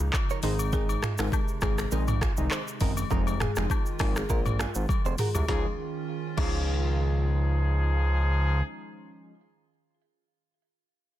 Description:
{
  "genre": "afrobeats",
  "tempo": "101 BPM",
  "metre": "4/4",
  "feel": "swing 55% on 16ths",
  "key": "Db major",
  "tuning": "A4 = 440 Hz",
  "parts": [
    { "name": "hollow soft pad", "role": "sustained chords", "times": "0.0-8.6 s", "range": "C3 to F4", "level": "-39 LUFS", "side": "right 3 dB", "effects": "chorus" },
    { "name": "fat analog bass", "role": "bass", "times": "0.0-8.6 s", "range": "F1 to Db2", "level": "-27 LUFS", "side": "equal", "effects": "none" },
    { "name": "afro-pop drum kit", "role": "drums", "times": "0.1-6.6 s", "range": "crash cymbal, finger snaps, handclaps, hi-hat, kick drum, rim click, shaker, snare drum, toms", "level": "-28 LUFS", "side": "equal", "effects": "none" },
    { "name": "agogo bells and woodblock", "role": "percussion", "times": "0.1-6.6 s", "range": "none", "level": "-39 LUFS", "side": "left 10 dB", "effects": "none" },
    { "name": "direct-recorded clean electric guitar", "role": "riff", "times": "0.3-7.2 s", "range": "Eb4 to Db5", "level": "-39 LUFS", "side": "right 10 dB", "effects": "digital delay" },
    { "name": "folk marimba with medium mallets", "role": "melody", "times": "0.4-7.2 s", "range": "Ab4 to Bb4", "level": "-38 LUFS", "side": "left 3 dB", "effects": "digital delay" },
    { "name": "warm analog keys", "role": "accompaniment", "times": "0.4-9.3 s", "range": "Eb3 to Eb4", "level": "-35 LUFS", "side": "left 1 dB", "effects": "chorus" },
    { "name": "warm horn section", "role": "second line", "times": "5.5-8.6 s", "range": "F3 to Ab4", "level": "-34 LUFS", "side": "left 1 dB", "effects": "none" }
  ],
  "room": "digital ambience",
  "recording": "dense, heavily limited modern master",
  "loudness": "-25 LUFS",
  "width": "side -13 dB against mid",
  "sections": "0.0-5.5 A section; 5.5-7.9 B section",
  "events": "drum fill 4.9-5.5",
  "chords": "0.4 Ab; 3.1 Fm7; 5.5 Dbadd9",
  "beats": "0.14 | 0.73 1.32 1.92 2.51 | 3.11 3.70 4.29 4.89 | 5.48 6.08 6.67 7.26"
}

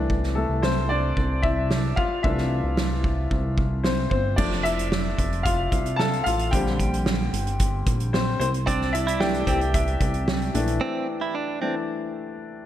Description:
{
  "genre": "piano-driven pop",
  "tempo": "112 BPM",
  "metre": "4/4",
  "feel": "straight",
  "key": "unclear",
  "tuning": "A4 = 440 Hz",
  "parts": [
    { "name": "clear concert grand piano", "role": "accompaniment", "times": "0.0-12.7 s", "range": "D3 to A5", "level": "-26 LUFS", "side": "left 2 dB", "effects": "none" },
    { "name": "chorused synth bass", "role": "bass", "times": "0.0-10.8 s", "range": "F1 to C2", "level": "-26 LUFS", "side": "equal", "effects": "none" },
    { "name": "loose indie drum kit", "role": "drums", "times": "0.1-10.8 s", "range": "crash cymbal, hi-hat, kick drum, snare drum", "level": "-26 LUFS", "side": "right 1 dB", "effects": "none" },
    { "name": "direct-recorded clean electric guitar", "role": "riff", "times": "8.7-11.7 s", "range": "C4 to E4", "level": "-29 LUFS", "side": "right 5 dB", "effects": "none" }
  ],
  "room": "light reverb",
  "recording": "bright 1980s-style digital production",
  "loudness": "-21 LUFS",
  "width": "side -12 dB against mid",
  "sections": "0.0-4.4 A section; 4.4-12.7 B section",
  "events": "grand piano solo 0.0-4.4, 4.4-12.7; break 10.8-12.7",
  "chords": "0.0 C6; 4.4 F; 6.5 Bb6; 8.4 C6",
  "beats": "| 0.10 0.63 1.17 1.70 | 2.24 2.78 3.31 3.85 | 4.38 4.92 5.46 5.99 | 6.53 7.06 7.60 8.13 | 8.67 9.21 9.74 10.28 | 10.81 11.35 11.89 12.42"
}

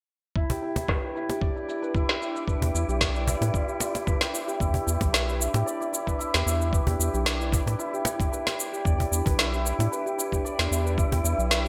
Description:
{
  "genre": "organic downtempo",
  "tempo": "113 BPM",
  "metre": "4/4",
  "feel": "swing 53% on 16ths",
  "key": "E minor",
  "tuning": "A4 = 440 Hz",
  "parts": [
    { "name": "wind-like tuned noise texture", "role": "texture", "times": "1.1-11.7 s", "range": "D4 to D5", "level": "-40 LUFS", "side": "equal", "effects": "built-in reverb, lush chorus" },
    { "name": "santur", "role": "arpeggios", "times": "0.4-11.7 s", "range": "E4 to D5", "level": "-32 LUFS", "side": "equal", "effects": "low-pass filter, digital delay" },
    { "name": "electronic kick drum", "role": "drums", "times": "0.4-11.1 s", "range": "none", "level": "-30 LUFS", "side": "equal", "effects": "small room ambience" },
    { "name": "electronic shaker and snare drum", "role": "drums", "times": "0.4-11.6 s", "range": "none", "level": "-30 LUFS", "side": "equal", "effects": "low-pass filter on perc, small room ambience, low-pass filter on snare, gated reverb" },
    { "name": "cajon", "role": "percussion", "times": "0.5-11.2 s", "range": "none", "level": "-33 LUFS", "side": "equal", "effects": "none" },
    { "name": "round analog bass", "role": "bass", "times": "2.6-11.7 s", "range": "B1 to A2", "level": "-29 LUFS", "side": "equal", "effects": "sidechain pumping" }
  ],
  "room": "light reverb",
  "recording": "bright 1980s-style digital production",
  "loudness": "-26 LUFS",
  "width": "mono",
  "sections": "0.4-4.6 A section; 4.6-11.7 B section",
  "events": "filter sweep on drum 0.4-4.6",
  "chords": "0.4 Em7",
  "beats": "| 0.36 0.89 1.42 1.95 | 2.48 3.01 3.54 4.08 | 4.61 5.14 5.67 6.20 | 6.73 7.26 7.79 8.32 | 8.86 9.39 9.92 10.45 | 10.98 11.51"
}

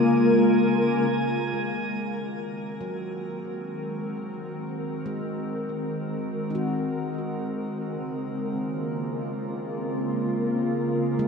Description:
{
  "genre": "ambient",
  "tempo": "71 BPM",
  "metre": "4/4",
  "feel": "straight",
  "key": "unclear",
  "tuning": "A4 = 439 Hz",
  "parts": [
    { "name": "glassy FM pad", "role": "sustained chords", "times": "0.0-11.3 s", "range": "Db3 to Bb4", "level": "-25 LUFS", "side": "left 1 dB", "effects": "ensemble chorus, built-in reverb, shimmer reverb" },
    { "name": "drifting glass-harmonics texture", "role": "texture", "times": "0.0-1.1 s", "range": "Ab5", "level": "-34 LUFS", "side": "right 3 dB", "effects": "chorus, built-in reverb, shimmer reverb" },
    { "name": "handpan", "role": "arpeggios", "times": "1.5-11.3 s", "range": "Gb3 to Gb4", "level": "-37 LUFS", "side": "left 2 dB", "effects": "tape echo, shimmer reverb" }
  ],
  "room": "wet cathedral reverb, RT60 5.8 s",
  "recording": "in a vast, echoing space",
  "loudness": "-25 LUFS",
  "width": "side -5 dB against mid",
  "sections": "0.0-1.1 A section; 1.1-11.3 B section",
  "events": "fade-in on ambient pad 1.1-11.3; fade-in on handpan 1.1-11.3",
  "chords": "0.0 Bbm7; 1.1 Ab9; 7.9 Bbm7",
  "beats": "0.27 | 1.11 1.96 2.80 3.65 | 4.49 5.34 6.18 7.03 | 7.87 8.72 9.56 10.41 | 11.25"
}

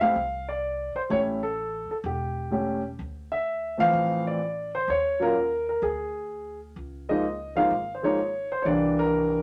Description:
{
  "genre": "jazz piano trio",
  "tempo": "127 BPM",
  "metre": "4/4",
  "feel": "swing 68% on 8ths",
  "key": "unclear",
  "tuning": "A4 = 441 Hz",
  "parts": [
    { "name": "warm concert grand piano", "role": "melody", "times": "0.0-9.4 s", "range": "E3 to F5", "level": "-27 LUFS", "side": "equal", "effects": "none" },
    { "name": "upright bass", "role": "bass", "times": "0.0-9.4 s", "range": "E1 to Eb2", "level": "-41 LUFS", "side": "equal", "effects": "none" }
  ],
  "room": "wet studio reverb, RT60 0.6 s",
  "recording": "none",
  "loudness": "-27 LUFS",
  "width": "mono",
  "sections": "0.0-9.4 A section",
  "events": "none",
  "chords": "0.0 F5; 1.1 A7; 3.0 Dm9; 4.9 Eb7(no3); 5.8 N.C.; 6.8 Db69; 8.7 C7",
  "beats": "0.15 0.63 | 1.10 1.57 2.04 2.52 | 2.99 3.46 3.94 4.41 | 4.88 5.35 5.83 6.30 | 6.77 7.24 7.71 8.19 | 8.66 9.13"
}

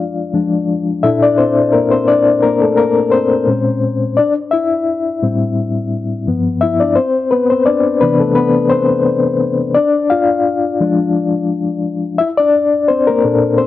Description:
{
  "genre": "R&B",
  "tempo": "86 BPM",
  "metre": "4/4",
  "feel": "swing 55% on 16ths",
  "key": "unclear",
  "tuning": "A4 = 440 Hz",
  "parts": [
    { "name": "reed electric piano", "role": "solo", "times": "0.0-13.7 s", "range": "G2 to F5", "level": "-12 LUFS", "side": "left 3 dB", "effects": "fast tremolo, cassette tape" }
  ],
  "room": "light reverb",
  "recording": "home recording on cassette",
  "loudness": "-12 LUFS",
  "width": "side -13 dB against mid",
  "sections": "0.0-13.7 A section",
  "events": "reed electric piano solo 0.0-13.7",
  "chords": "0.0 Fm6; 1.0 Bbmaj9; 3.5 Bbm9; 4.2 Am7; 6.3 G7; 7.0 Cmaj9; 9.8 Fm6; 12.2 Bbmaj9",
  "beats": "0.68 | 1.38 2.08 2.78 3.48 | 4.17 4.87 5.57 6.26 | 6.96 7.66 8.36 9.06 | 9.75 10.45 11.15 11.85 | 12.54 13.24"
}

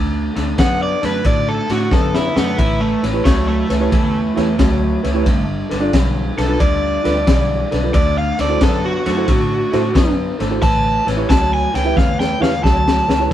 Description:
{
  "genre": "electric blues shuffle",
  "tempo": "90 BPM",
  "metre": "4/4",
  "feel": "swing 67% on 8ths",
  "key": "D major",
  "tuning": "A4 = 439 Hz",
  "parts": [
    { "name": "electric guitar through a small old amp", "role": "riff", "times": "0.0-13.3 s", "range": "G2 to B3", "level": "-22 LUFS", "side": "left 1 dB", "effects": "none" },
    { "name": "vintage muted fingered electric bass", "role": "bass", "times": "0.0-13.3 s", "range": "G1 to A2", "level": "-22 LUFS", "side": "equal", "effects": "none" },
    { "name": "crunchy breakbeat drum kit", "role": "drums", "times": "0.4-13.3 s", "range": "kick drum, ride cymbal, snare drum", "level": "-18 LUFS", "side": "equal", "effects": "none" },
    { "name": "overdriven electric guitar", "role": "melody", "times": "0.6-13.3 s", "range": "A3 to A5", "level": "-19 LUFS", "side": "right 1 dB", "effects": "none" },
    { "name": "barky reed electric piano", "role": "accompaniment", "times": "3.0-13.3 s", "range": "D4 to E5", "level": "-22 LUFS", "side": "right 3 dB", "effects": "overdrive, fast tremolo" }
  ],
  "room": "light reverb",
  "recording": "band playing live in one room",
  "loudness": "-14 LUFS",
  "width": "side -11 dB against mid",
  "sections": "0.0-13.3 A section",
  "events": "overdriven electric guitar solo 0.0-13.3; drum fill 1.9-2.6, 12.0-13.3",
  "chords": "0.0 D; 2.6 A9; 5.3 G9; 7.9 D9; 10.6 A9",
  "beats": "0.58 1.25 1.92 | 2.59 3.25 3.92 4.59 | 5.26 5.93 6.60 7.27 | 7.94 8.61 9.28 9.95 | 10.62 11.29 11.96 12.63 | 13.30"
}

